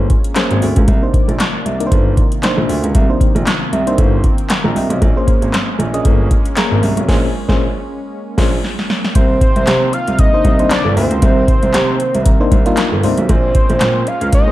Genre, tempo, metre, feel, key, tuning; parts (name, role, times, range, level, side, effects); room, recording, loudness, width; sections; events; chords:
early-eighties boogie funk; 116 BPM; 4/4; swing 56% on 16ths; C phrygian; A4 = 440 Hz
FM electric piano with auto-pan; accompaniment; 0.0-14.5 s; Bb3 to Bb5; -20 LUFS; left 2 dB
warm analog pad; sustained chords; 0.0-14.5 s; C3 to D5; -25 LUFS; right 1 dB; chorus, tremolo
warm grand piano; bass; 0.0-14.4 s; G1 to C3; -17 LUFS; right 1 dB
electro analog drum machine; drums; 0.1-14.5 s; crash cymbal, handclaps, hi-hat, kick drum, snare drum; -14 LUFS; equal
fat analog lead; melody; 9.2-14.5 s; C5 to F5; -17 LUFS; equal; chorus, slapback echo
light reverb, digital ambience; dark, warm production; -12 LUFS; side -15 dB against mid
0.0-9.2 A section; 9.2-14.5 B section
band accent 7.1-9.2; FM electric piano fill 7.6-9.2; drum fill 8.6-9.2
0.0 Bbm9; 0.9 Cm9; 5.0 Bbm9; 9.2 Cm9; 13.3 Bbm9